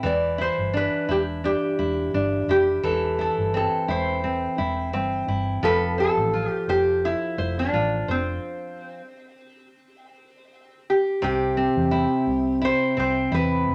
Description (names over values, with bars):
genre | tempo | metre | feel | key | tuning
pop | 86 BPM | 4/4 | swing 55% on 16ths | C major | A4 = 440 Hz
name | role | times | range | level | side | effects
nylon-string guitar | accompaniment | 0.0-13.7 s | C3 to C5 | -27 LUFS | equal | none
vintage muted fingered electric bass | bass | 0.0-13.7 s | E1 to E2 | -31 LUFS | equal | none
lap resonator guitar | melody | 0.1-13.7 s | C4 to D5 | -26 LUFS | equal | none
room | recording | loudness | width
moderate studio reverb, RT60 0.8 s | none | -23 LUFS | mono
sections
0.0-11.2 A section; 11.2-13.7 B section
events
stop 8.4-11.2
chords
0.0 Em7; 2.8 Am7/E; 5.6 F; 8.4 N.C.; 11.2 C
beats
| 0.04 0.74 1.44 2.13 | 2.83 3.54 4.23 4.93 | 5.63 6.33 7.03 7.73 | 8.43 9.13 9.83 10.53 | 11.22 11.92 12.62 13.32